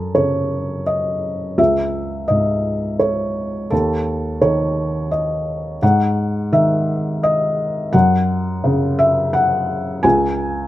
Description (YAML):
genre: classical, contemporary piece for solo felt piano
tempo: 85 BPM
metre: 3/4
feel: rubato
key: C# minor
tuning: A4 = 440 Hz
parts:
  - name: felt-muted upright piano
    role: solo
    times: 0.0-10.7 s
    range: C#2 to G#5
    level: -16 LUFS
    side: equal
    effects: none
room: moderate studio reverb, RT60 0.6 s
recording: rough home demo mix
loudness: -16 LUFS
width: side -14 dB against mid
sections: 0.0-10.7 A section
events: none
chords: 0.0 F#m; 1.6 C#m; 3.7 N.C.; 5.8 G#5; 7.9 F#5; 10.0 C#5